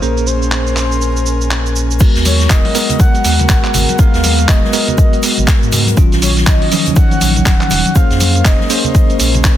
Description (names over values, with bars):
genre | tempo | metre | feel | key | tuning
deep house | 121 BPM | 4/4 | swing 60% on 16ths | unclear | A4 = 443 Hz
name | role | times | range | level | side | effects
breathy flute-like synth lead | melody | 0.0-9.2 s | A#4 to F#5 | -21 LUFS | equal | lush chorus, digital delay
airy breathy pad | sustained chords | 0.0-9.6 s | G#3 to B#5 | -26 LUFS | left 1 dB | chorus, sidechain pumping
bell-like tine electric piano | stabs | 0.0-9.6 s | D#3 to B#4 | -18 LUFS | equal | fast stereo tremolo, sidechain pumping, digital delay
sub bass with octave | bass | 0.0-9.6 s | D#1 to G#2 | -16 LUFS | equal | sidechain pumping
dusty soul sampler-style drum kit | drums | 0.0-9.6 s | cabasa, crash cymbal, handclaps, hi-hat | -17 LUFS | right 1 dB | soft clipping on snare
electronic kick drum | drums | 2.0-9.6 s | none | -11 LUFS | equal | overdrive
soft-mallet drum kit | drums | 2.0-9.6 s | hi-hat, shaker, snare drum | -27 LUFS | left 3 dB | high-pass filter on hats, high-pass filter on snare, high-pass filter on perc, high-pass filter on room
congas | percussion | 2.3-9.4 s | none | -23 LUFS | right 2 dB | none
room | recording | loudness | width
small room reverb | dense, heavily limited modern master, low-pass filter | -10 LUFS | side -12 dB against mid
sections
0.0-2.0 A section; 2.0-9.6 B section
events
drop 2.0-9.6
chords
0.0 A#m9; 2.0 G#m9; 6.0 D#m9; 8.0 A#m9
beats
| 0.02 0.52 1.01 1.51 | 2.00 2.50 3.00 3.49 | 3.99 4.49 4.98 5.48 | 5.97 6.47 6.96 7.46 | 7.96 8.45 8.95 9.44